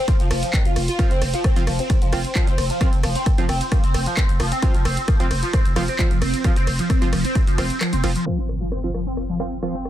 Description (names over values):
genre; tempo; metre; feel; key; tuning
driving peak-time techno; 132 BPM; 4/4; straight; unclear; A4 = 439 Hz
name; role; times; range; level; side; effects
overdriven synth lead; riff; 0.0-9.8 s; Eb3 to F4; -25 LUFS; equal; distortion, phaser, ensemble chorus, sidechain pumping, dub echo
electronic kick drum; drums; 0.1-7.4 s; none; -19 LUFS; equal; none
punchy analog drum machine; drums; 0.1-9.9 s; handclaps, hi-hat, ride cymbal, rim click; -28 LUFS; equal; soft clipping on snare, low-pass filter on snare, sidechain pumping on hats, low-pass filter on hats, sidechain pumping on cymbals, low-pass filter on cymbals
growling 808-style bass; bass; 0.2-8.2 s; F1; -24 LUFS; equal; overdrive, sidechain pumping, low-pass filter
supersaw stab; stabs; 1.0-9.7 s; F3 to F4; -30 LUFS; right 4 dB; cassette tape, sidechain pumping, digital delay
impact; sound effects; 8.3-9.9 s; none; -27 LUFS; equal; none
room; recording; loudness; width
little or no reverb; dense, heavily limited modern master, low-pass filter; -18 LUFS; side -12 dB against mid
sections
0.0-8.3 A section; 8.3-9.9 B section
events
drop 0.0-8.3; kick drops out 7.8-8.3; impact 8.3-9.9; filter sweep on analog synth lead 8.3-9.9; filter sweep 8.3-9.9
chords
0.0 F5